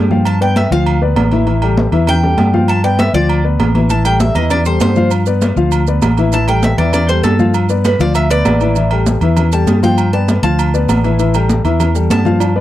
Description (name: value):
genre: latin, salsa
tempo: 197 BPM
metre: 4/4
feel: straight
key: unclear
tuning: A4 = 440 Hz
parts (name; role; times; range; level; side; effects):
- Cuban tres; melody; 0.0-12.6 s; A4 to A5; -18 LUFS; right 1 dB; none
- warm grand piano; accompaniment; 0.0-12.6 s; E3 to F5; -17 LUFS; left 5 dB; none
- fingered electric bass; bass; 0.0-12.6 s; A1 to G2; -14 LUFS; right 1 dB; none
- congas; percussion; 0.1-12.6 s; none; -18 LUFS; equal; none
- agogo bells and timbales; percussion; 0.3-12.6 s; none; -22 LUFS; right 7 dB; none
- maracas; percussion; 3.9-12.6 s; none; -30 LUFS; right 25 dB; none
room: little or no reverb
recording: dry, close 1970s-style studio recording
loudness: -11 LUFS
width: side -14 dB against mid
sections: 0.0-12.6 A section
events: Cuban tres solo 0.0-12.6; drum fill 12.4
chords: 0.3 G9; 1.5 A5; 2.7 G9; 3.9 Am7; 5.1 G9; 6.3 A5; 7.5 G9; 8.8 A5; 10.0 G9; 11.2 A5